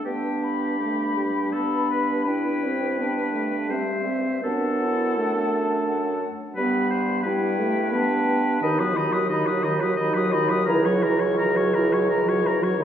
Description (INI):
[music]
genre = classical, slow romantic movement for wind quintet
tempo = 77-90 BPM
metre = 3/4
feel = rubato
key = G major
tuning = A4 = 440 Hz
[part]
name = silver concert flute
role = melody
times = 0.0-12.8 s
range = E5 to D#6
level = -30 LUFS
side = left 5 dB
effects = none
[part]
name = clear oboe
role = second line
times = 0.0-12.8 s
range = G4 to D#5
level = -30 LUFS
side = left 2 dB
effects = none
[part]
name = mellow French horn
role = accompaniment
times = 0.0-12.8 s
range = D#3 to D4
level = -27 LUFS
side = equal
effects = none
[part]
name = warm clarinet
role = accompaniment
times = 0.0-12.8 s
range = B3 to F#4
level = -27 LUFS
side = right 3 dB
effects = none
[part]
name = warm bassoon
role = bass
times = 0.1-12.8 s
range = C#2 to G2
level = -26 LUFS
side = right 1 dB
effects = none
[sound]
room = wet recital hall reverb, RT60 1.8 s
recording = heard from further back in the room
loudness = -21 LUFS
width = side -9 dB against mid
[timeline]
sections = 0.1-12.8 A section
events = none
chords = 0.1 G; 2.3 Am7/G; 4.4 D/F#; 6.6 G; 8.6 B/D#; 10.7 F#7/C#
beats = | 0.05 0.80 1.53 | 2.27 2.99 3.71 | 4.44 5.18 5.88 | 6.56 7.25 7.93 | 8.63 9.31 9.98 | 10.67 11.38 12.09 | 12.79